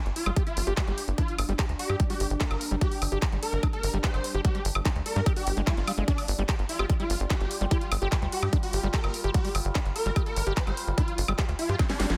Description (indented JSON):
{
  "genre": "psychedelic trance",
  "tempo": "147 BPM",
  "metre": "4/4",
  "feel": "straight",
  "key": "G minor",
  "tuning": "A4 = 440 Hz",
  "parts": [
    { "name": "overtone-sweeping drone", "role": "sustained chords", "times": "0.8-12.2 s", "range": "G3 to F4", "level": "-42 LUFS", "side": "equal", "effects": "chorus, built-in reverb, sidechain pumping" },
    { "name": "tight sequencer bass", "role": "bass", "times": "0.1-12.2 s", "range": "G1 to G2", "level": "-31 LUFS", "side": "equal", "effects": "none" },
    { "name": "drum and bass drum kit", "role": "drums", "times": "0.1-12.2 s", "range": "handclaps, hi-hat, snare drum, woodblock", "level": "-36 LUFS", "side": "equal", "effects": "none" },
    { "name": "swarming rave lead", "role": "melody", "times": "0.2-12.1 s", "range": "D4 to C5", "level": "-37 LUFS", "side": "equal", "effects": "chorus, phaser, sidechain pumping, dub echo" },
    { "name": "screaming distorted acid line", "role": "riff", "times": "0.3-12.2 s", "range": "F3 to G4", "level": "-38 LUFS", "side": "equal", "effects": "distortion, chorus, sidechain pumping, delay" },
    { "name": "electronic kick drum", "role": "drums", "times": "0.4-11.9 s", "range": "none", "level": "-29 LUFS", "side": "equal", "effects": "overdrive" }
  ],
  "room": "light reverb",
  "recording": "dense, heavily limited modern master",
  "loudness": "-27 LUFS",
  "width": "mono",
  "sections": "0.0-12.2 A section",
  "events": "filter sweep on acid bass 0.0-12.2; drum fill 11.8-12.2",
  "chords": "0.0 G5"
}